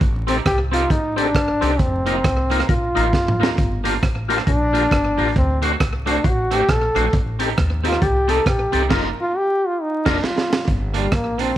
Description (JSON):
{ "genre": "ska", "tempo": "135 BPM", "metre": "4/4", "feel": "swing 61% on 8ths", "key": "G minor", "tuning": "A4 = 441 Hz", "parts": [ { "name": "upright bass", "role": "bass", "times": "0.0-11.5 s", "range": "F1 to Eb2", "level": "-23 LUFS", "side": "equal", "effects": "none" }, { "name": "crunchy breakbeat drum kit", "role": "drums", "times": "0.0-11.5 s", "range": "crash cymbal, hi-hat, kick drum, rim click, snare drum, toms", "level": "-21 LUFS", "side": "right 1 dB", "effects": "slapback echo" }, { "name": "warm trombone", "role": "melody", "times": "0.3-11.6 s", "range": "G3 to A4", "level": "-21 LUFS", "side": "left 1 dB", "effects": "none" }, { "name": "electric guitar at the edge of break-up", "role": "accompaniment", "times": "0.3-11.5 s", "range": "A3 to G4", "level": "-27 LUFS", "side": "right 9 dB", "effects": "none" }, { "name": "percussive tonewheel organ", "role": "stabs", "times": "0.3-10.2 s", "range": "C4 to C5", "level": "-26 LUFS", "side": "left 10 dB", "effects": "overdrive, chorus vibrato, slow rotary speaker" } ], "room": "light reverb, small room reverb", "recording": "1960s-style stereo with parts hard left and right, tape saturation, vinyl crackle", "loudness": "-16 LUFS", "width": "side -12 dB against mid", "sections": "0.0-10.7 A section", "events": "trombone solo 0.0-10.7; drum fill 3.1-3.6, 10.2-10.7; band accent 8.9-10.7", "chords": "0.0 Am7b5; 1.8 F7sus4; 3.6 Gm7; 5.4 D7; 7.1 Am7b5; 8.9 F7sus4; 10.7 Gm7" }